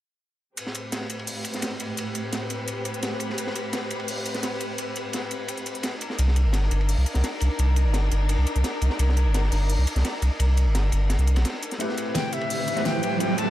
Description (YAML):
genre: liquid drum and bass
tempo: 171 BPM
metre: 4/4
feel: straight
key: A minor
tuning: A4 = 440 Hz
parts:
  - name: muted studio string section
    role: sustained chords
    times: 0.6-13.5 s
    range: A2 to B4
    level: -31 LUFS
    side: left 1 dB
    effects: low-pass filter
  - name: crunchy breakbeat drum kit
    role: drums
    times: 0.6-13.5 s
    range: hi-hat, ride cymbal, snare drum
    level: -32 LUFS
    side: equal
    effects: high-pass filter on cymbals, small room ambience, high-pass filter on hats, high-pass filter on snare, high-pass filter on room
  - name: pop drum kit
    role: drums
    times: 0.6-13.5 s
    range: hi-hat, snare drum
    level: -32 LUFS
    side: left 1 dB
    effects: small room ambience
  - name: warm sub bass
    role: bass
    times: 6.2-11.4 s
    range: G1 to C2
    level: -20 LUFS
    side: equal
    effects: none
  - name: clear grand piano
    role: accompaniment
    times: 11.8-13.5 s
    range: A3 to B4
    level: -29 LUFS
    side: left 1 dB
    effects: low-pass filter
  - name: riser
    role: sound effects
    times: 12.2-13.5 s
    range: none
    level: -28 LUFS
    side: right 3 dB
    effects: none
  - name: bright reedy silver concert flute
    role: melody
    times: 12.2-13.5 s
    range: E5 to A5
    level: -28 LUFS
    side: left 2 dB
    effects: ping-pong delay
room: light reverb, small room ambience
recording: none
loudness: -23 LUFS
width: side -14 dB against mid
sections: 0.6-11.8 A section; 11.8-13.5 B section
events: filter sweep on string section 0.6-11.8; break 11.4-11.8; build-up 11.8-13.5; filter sweep on grand piano 11.8-13.5; riser 12.2-13.5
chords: 0.6 Am7; 6.0 Cm7; 11.8 Am7